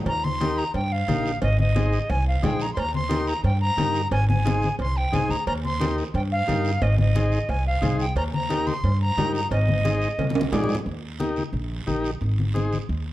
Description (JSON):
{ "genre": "latin, cumbia", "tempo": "178 BPM", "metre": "4/4", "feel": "straight", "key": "Eb major", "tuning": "A4 = 439 Hz", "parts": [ { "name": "bright reedy silver concert flute", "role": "melody", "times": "0.1-10.5 s", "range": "Eb5 to C6", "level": "-27 LUFS", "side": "equal", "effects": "none" }, { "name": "upright bass", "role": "bass", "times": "0.1-13.1 s", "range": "Ab1 to G2", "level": "-24 LUFS", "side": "equal", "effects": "none" }, { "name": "congas", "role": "percussion", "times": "0.1-13.1 s", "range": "none", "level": "-30 LUFS", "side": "left 2 dB", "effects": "none" }, { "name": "cowbell and timbales", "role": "percussion", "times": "0.1-10.8 s", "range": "none", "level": "-32 LUFS", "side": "right 3 dB", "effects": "none" }, { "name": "guiro", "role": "percussion", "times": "0.1-13.1 s", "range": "none", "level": "-42 LUFS", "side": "right 6 dB", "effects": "none" }, { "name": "combo organ", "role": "accompaniment", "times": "0.4-12.8 s", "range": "Eb4 to D5", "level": "-29 LUFS", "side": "left 2 dB", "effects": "none" } ], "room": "light reverb", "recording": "dark, warm production", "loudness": "-21 LUFS", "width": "side -15 dB against mid", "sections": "0.1-10.9 A section; 10.9-13.1 B section", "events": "drum fill 10.2-10.9", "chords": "0.1 Eb; 1.4 Ab; 2.8 Eb; 4.1 Ab; 5.5 Eb; 6.8 Ab; 8.2 Eb; 9.5 Ab; 10.9 Eb; 12.2 Ab" }